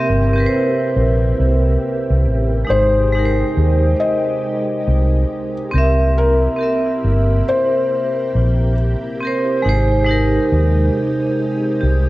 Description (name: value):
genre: hip hop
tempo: 69 BPM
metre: 4/4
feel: swing 62% on 16ths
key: unclear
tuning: A4 = 440 Hz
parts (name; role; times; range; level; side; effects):
- vibraphone with hard mallets; accompaniment; 0.0-12.1 s; Ab3 to E5; -19 LUFS; right 1 dB; cassette tape
- ensemble organ-string; sustained chords; 0.0-12.1 s; C3 to G4; -25 LUFS; equal; ensemble chorus
- vintage muted fingered electric bass; bass; 0.1-12.1 s; G1 to Eb2; -16 LUFS; equal; none
- felt-muted upright piano; melody; 2.7-8.7 s; Bb4 to Eb5; -20 LUFS; left 3 dB; none
room: light reverb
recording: worn, warbling old tape, cassette tape, warbly pitch drift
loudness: -14 LUFS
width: side -18 dB against mid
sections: 0.0-12.1 A section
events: none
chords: 0.0 C7; 2.7 Abmaj7; 5.7 C7; 9.6 Abmaj7